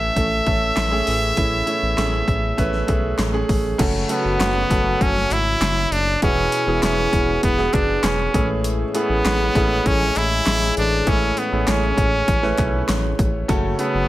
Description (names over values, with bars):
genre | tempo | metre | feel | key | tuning
piano-driven pop | 99 BPM | 4/4 | straight | unclear | A4 = 443 Hz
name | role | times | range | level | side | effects
brilliant trumpet | melody | 0.0-14.1 s | B3 to E5 | -21 LUFS | equal | none
clear grand piano | accompaniment | 0.0-14.1 s | A2 to G#5 | -24 LUFS | right 2 dB | none
mellow French horn section | sustained chords | 0.0-14.1 s | E3 to C#5 | -32 LUFS | left 1 dB | none
round analog bass | bass | 0.0-14.1 s | E1 to B1 | -24 LUFS | equal | none
deep house drum kit | drums | 0.2-13.9 s | crash cymbal, handclaps, hi-hat, kick drum, snare drum | -23 LUFS | equal | overdrive
dark French horn section | second line | 3.8-14.1 s | E3 to G#4 | -28 LUFS | left 4 dB | none
group handclap | percussion | 4.4-13.0 s | none | -34 LUFS | left 5 dB | none
room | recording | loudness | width
light reverb, small room ambience | none | -17 LUFS | side -15 dB against mid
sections
0.0-3.8 A section; 3.8-14.1 B section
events
none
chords
0.0 Amaj7; 3.8 F#m; 6.2 Eadd9; 8.3 Amaj7; 13.5 F#m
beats
0.16 0.77 | 1.37 1.98 2.59 3.19 | 3.80 4.41 5.01 5.62 | 6.22 6.83 7.43 8.04 | 8.65 9.25 9.86 10.46 | 11.07 11.68 12.28 12.89 | 13.49